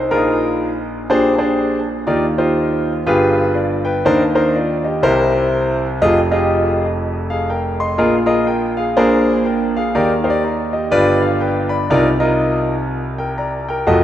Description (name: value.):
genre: gospel.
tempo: 122 BPM.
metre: 4/4.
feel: swing 60% on 8ths.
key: unclear.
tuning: A4 = 439 Hz.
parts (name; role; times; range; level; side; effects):
clear concert grand piano; solo; 0.0-14.0 s; F1 to C6; -14 LUFS; equal; none.
room: wet lush hall reverb, RT60 2.9 s.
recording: rough home demo mix.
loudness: -14 LUFS.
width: side -11 dB against mid.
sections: 0.0-2.1 A section; 2.1-14.0 B section.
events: none.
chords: 0.1 Bb7sus4; 1.1 Bb13; 2.1 Ebmaj9; 3.1 G7b9; 4.0 Cm9/Eb; 5.0 C7; 6.0 Fm9; 8.0 Bb7sus4; 9.0 Bb9; 9.9 Ebmaj7; 10.9 G7; 11.9 Cm11.